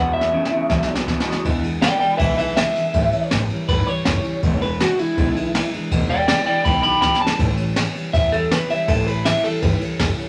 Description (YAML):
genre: rockabilly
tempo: 161 BPM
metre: 4/4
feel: straight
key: E mixolydian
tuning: A4 = 440 Hz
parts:
  - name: electric guitar through a small old amp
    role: melody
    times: 0.0-10.3 s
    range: E4 to B5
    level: -22 LUFS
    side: equal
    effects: none
  - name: picked steel-string acoustic guitar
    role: accompaniment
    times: 0.0-10.3 s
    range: E2 to E4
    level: -28 LUFS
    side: equal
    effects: none
  - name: electric guitar through a small old amp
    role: riff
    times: 0.0-1.4 s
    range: E2 to C#3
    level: -28 LUFS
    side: equal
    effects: none
  - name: upright bass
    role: bass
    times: 0.0-10.2 s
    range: E1 to E2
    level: -27 LUFS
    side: equal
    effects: none
  - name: jazz brush drum kit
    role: drums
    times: 0.2-10.3 s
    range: kick drum, ride cymbal, snare drum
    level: -25 LUFS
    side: equal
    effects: none
room: light reverb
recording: none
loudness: -19 LUFS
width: mono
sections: 0.0-1.4 A section; 1.4-10.3 B section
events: drum fill 0.0-1.4, 7.0-7.4; clean electric guitar solo 1.4-10.3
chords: 0.0 E7; 2.9 A7; 4.4 E7; 7.4 A7